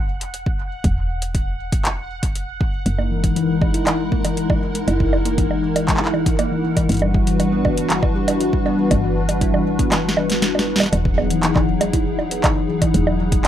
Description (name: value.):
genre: IDM.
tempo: 119 BPM.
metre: 4/4.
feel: straight.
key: unclear.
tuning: A4 = 437 Hz.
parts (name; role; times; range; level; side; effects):
woody FM bass; bass; 0.0-13.5 s; E1 to G1; -25 LUFS; equal; none.
bubbling stepped-filter texture; texture; 0.0-13.5 s; F#5; -33 LUFS; equal; chorus, built-in reverb.
booming analog drum machine; drums; 0.2-13.5 s; bongos, handclaps, hi-hat, snare drum; -22 LUFS; right 2 dB; none.
electronic kick drum; drums; 0.5-13.4 s; none; -21 LUFS; equal; none.
hollow soft pad; sustained chords; 3.1-13.5 s; F#3 to B4; -22 LUFS; left 1 dB; ensemble chorus.
harp-like synth pluck; arpeggios; 3.0-13.5 s; E3 to E4; -23 LUFS; left 2 dB; chorus, phaser, digital delay.
room: light reverb.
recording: rough home demo mix.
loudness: -17 LUFS.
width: side -11 dB against mid.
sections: 0.0-10.9 A section; 10.9-13.5 B section.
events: kick drops out 9.9-10.9; drum fill 9.9-10.9.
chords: 0.0 Esus2; 2.9 F#13; 6.9 Gmaj7; 10.9 Emaj9.